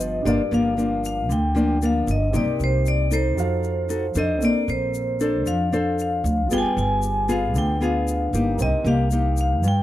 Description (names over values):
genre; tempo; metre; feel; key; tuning
bossa nova; 115 BPM; 4/4; straight; G minor; A4 = 444 Hz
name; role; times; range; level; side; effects
vibraphone with medium hard mallets; melody; 0.0-9.8 s; C5 to Ab5; -25 LUFS; left 1 dB; none
nylon-string guitar; accompaniment; 0.0-9.8 s; G2 to C5; -24 LUFS; left 1 dB; none
warm grand piano; accompaniment; 0.0-9.8 s; B3 to G5; -34 LUFS; right 6 dB; none
upright bass; bass; 0.0-9.8 s; G1 to G2; -24 LUFS; equal; none
egg shaker; percussion; 0.0-9.8 s; none; -38 LUFS; left 11 dB; none
room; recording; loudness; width
small room ambience; dry, close 1970s-style studio recording; -19 LUFS; side -14 dB against mid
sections
0.2-9.8 A section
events
none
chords
0.2 Gm7; 2.3 Cm7; 3.4 F7b9; 4.4 Bbmaj9; 6.5 G7b9; 8.6 Cm7